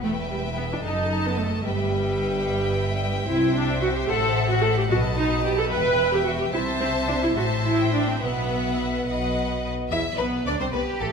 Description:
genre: quick classical-period movement for string orchestra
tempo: 74 BPM (dotted quarters)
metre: 6/8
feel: straight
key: E minor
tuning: A4 = 440 Hz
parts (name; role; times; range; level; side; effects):
- clear studio violin section; melody; 0.0-11.1 s; A4 to A5; -32 LUFS; left 5 dB; none
- rich studio violin section; second line; 0.0-11.1 s; A4 to E5; -29 LUFS; left 2 dB; none
- rich studio viola section; accompaniment; 0.0-11.1 s; G3 to B4; -24 LUFS; right 1 dB; none
- clear studio double bass section; bass; 0.0-11.1 s; E1 to E2; -29 LUFS; right 1 dB; none
- rich studio cello section; bass; 0.0-11.1 s; E2 to G4; -30 LUFS; right 2 dB; none
room: wet scoring stage reverb, RT60 1.6 s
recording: minimal, uncompressed stereo recording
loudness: -21 LUFS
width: side -6 dB against mid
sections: 0.0-9.9 A section; 9.9-11.1 B section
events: none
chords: 0.0 Em; 0.8 D#dim/F#; 1.7 Em/G; 3.3 C; 4.1 F#m7b5/A; 4.9 B7; 5.7 Em; 6.5 Am/C; 7.4 Am; 8.2 Bsus4; 9.9 Em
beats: | 0.03 0.85 | 1.66 2.47 | 3.28 4.09 | 4.90 5.71 | 6.54 7.37 | 8.22 9.06 | 9.91 10.73

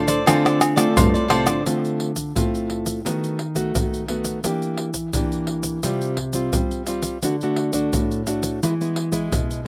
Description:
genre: samba and choro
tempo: 86 BPM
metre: 4/4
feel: straight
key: D minor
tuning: A4 = 440 Hz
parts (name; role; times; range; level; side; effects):
- mandolin; melody; 0.0-0.9 s; none; barely audible; none; none
- cavaquinho; accompaniment; 0.0-1.6 s; F4 to D5; -26 LUFS; equal; none
- nylon-string guitar; accompaniment; 0.0-9.7 s; A2 to G4; -25 LUFS; equal; slapback echo
- nylon-string guitar; bass; 0.0-1.6 s; G2 to D3; -24 LUFS; equal; none
- tube shaker, pandeiro, agogo bells, surdo and tamborim; percussion; 0.1-9.7 s; none; -26 LUFS; equal; none
room: little or no reverb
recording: recorded outdoors, with no room sound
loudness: -22 LUFS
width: mono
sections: 0.0-1.7 A section; 1.7-9.7 B section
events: none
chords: 0.0 Dm7; 3.1 B7/D#; 4.4 Em7b5; 5.8 Csus4; 7.2 D; 8.6 E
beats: 0.27 0.96 | 1.66 2.36 3.05 3.75 | 4.44 5.14 5.84 6.53 | 7.23 7.92 8.62 9.32

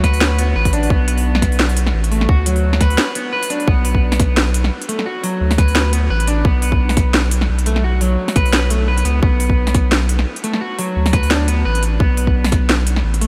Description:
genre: half-time drum and bass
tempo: 173 BPM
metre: 4/4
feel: swing 56% on 16ths, half-time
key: B minor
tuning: A4 = 439 Hz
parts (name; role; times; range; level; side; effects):
- electric guitar at the edge of break-up; arpeggios; 0.0-13.3 s; F#3 to B4; -24 LUFS; equal; subtle chorus, delay
- saturated sub bass; bass; 0.0-13.3 s; A1 to D2; -19 LUFS; equal; none
- drum and bass drum kit; drums; 0.0-13.3 s; hi-hat, snare drum; -23 LUFS; equal; none
- electronic kick drum; drums; 0.0-12.6 s; none; -18 LUFS; equal; none
- metallic inharmonic drone; texture; 0.0-3.7 s; F#4; -37 LUFS; equal; none
room: light reverb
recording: none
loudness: -16 LUFS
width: mono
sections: 0.0-3.7 A section; 3.7-13.3 A section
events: drop 0.0-3.7, 3.7-13.3; break 3.0-3.7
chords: 0.0 B5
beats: 0.21 0.55 | 0.90 1.25 1.59 1.94 | 2.29 2.63 2.98 3.33 | 3.68 4.02 4.37 4.72 | 5.06 5.41 5.76 6.10 | 6.45 6.80 7.14 7.49 | 7.84 8.18 8.53 8.88 | 9.22 9.57 9.92 10.27 | 10.61 10.96 11.31 11.65 | 12.00 12.35 12.69 13.04

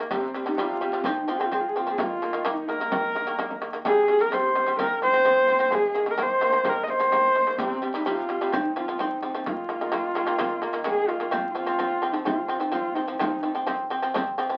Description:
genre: mongolian traditional, Mongolian folk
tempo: 128 BPM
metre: 4/4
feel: straight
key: F minor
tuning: A4 = 440 Hz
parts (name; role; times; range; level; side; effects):
- shamisen; arpeggios; 0.0-14.6 s; C3 to C4; -30 LUFS; equal; none
- dark horsehead fiddle; melody; 0.1-13.6 s; C4 to Eb5; -26 LUFS; equal; none
- frame drum; percussion; 0.1-14.6 s; none; -37 LUFS; equal; none
room: wet studio ambience, RT60 0.5 s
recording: very old 78 rpm record, vinyl crackle, nothing above 8.0 kHz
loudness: -25 LUFS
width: mono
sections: 0.0-11.3 A section; 11.3-14.6 B section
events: none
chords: 0.1 C5; 1.1 F5; 2.0 Eb5; 3.9 C5; 4.8 F5; 5.7 Eb5; 7.6 C5; 8.5 F5; 9.5 Eb5; 11.3 F5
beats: | 0.12 0.58 1.05 1.52 | 1.99 2.45 2.92 3.38 | 3.85 4.32 4.78 5.25 | 5.72 6.18 6.65 7.12 | 7.59 8.05 8.52 8.99 | 9.46 9.93 10.39 10.86 | 11.33 11.80 12.27 12.74 | 13.21 13.68 14.15

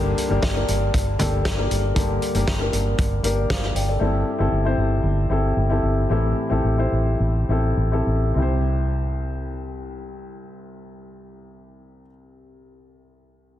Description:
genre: piano-driven pop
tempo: 99-117 BPM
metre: 4/4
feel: straight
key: C mixolydian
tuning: A4 = 440 Hz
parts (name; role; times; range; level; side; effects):
- warm baby grand piano; accompaniment; 0.0-13.6 s; C2 to G5; -24 LUFS; left 2 dB; none
- vintage muted fingered electric bass; bass; 0.0-12.0 s; G1 to C2; -22 LUFS; equal; none
- loose indie drum kit; drums; 0.2-3.9 s; hi-hat, kick drum, snare drum, toms; -25 LUFS; equal; none
room: light reverb, studio reverb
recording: dense, heavily limited modern master, lossy compression artefacts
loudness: -19 LUFS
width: side -12 dB against mid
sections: 0.0-8.4 A section; 8.4-13.2 B section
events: slowing down 4.0-8.4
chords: 0.0 Gm; 4.0 C6/G; 6.1 Am7; 8.4 C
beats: 0.43 0.94 1.45 | 1.96 2.47 2.99 3.50 | 4.01 4.52 5.04 5.56 | 6.10 6.64 7.20 7.78 | 8.37 8.97 9.57 10.18 | 10.78 11.39 11.99 12.59

